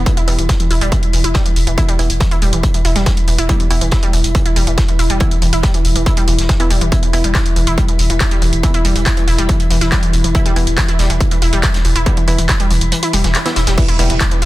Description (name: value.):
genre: driving peak-time techno.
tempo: 140 BPM.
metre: 4/4.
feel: straight.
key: E minor.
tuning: A4 = 440 Hz.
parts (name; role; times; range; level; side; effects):
saturated sub bass; bass; 0.0-14.5 s; E1; -17 LUFS; equal; sidechain pumping, low-pass filter.
metallic inharmonic drone; drone; 0.0-14.5 s; E3 to E4; -24 LUFS; left 1 dB; chorus, built-in reverb, sidechain pumping.
wide unison pluck; riff; 0.1-14.5 s; E3 to E4; -21 LUFS; equal; sidechain pumping, tape echo.
filtered dub chord stab; stabs; 0.1-14.1 s; E3 to E4; -25 LUFS; right 2 dB; chorus, sidechain pumping, tape echo.
electronic kick drum; drums; 0.1-14.3 s; none; -15 LUFS; equal; distortion.
techno drum kit; drums; 0.1-14.5 s; crash cymbal, handclaps, hi-hat; -21 LUFS; equal; sidechain pumping on hats, sidechain pumping on cymbals.
warm soul drum kit; drums; 0.1-14.5 s; hi-hat, snare drum; -28 LUFS; equal; high-pass filter on hats, high-pass filter on snare, high-pass filter on room.
swell and impact; sound effects; 13.1-14.5 s; none; -26 LUFS; equal; none.
room: little or no reverb.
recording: dense, heavily limited modern master.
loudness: -12 LUFS.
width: side -17 dB against mid.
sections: 0.0-13.8 A section.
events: kick drops out 12.9-13.8; swell 13.1-13.8; impact 13.8-14.5.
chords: 0.0 E5.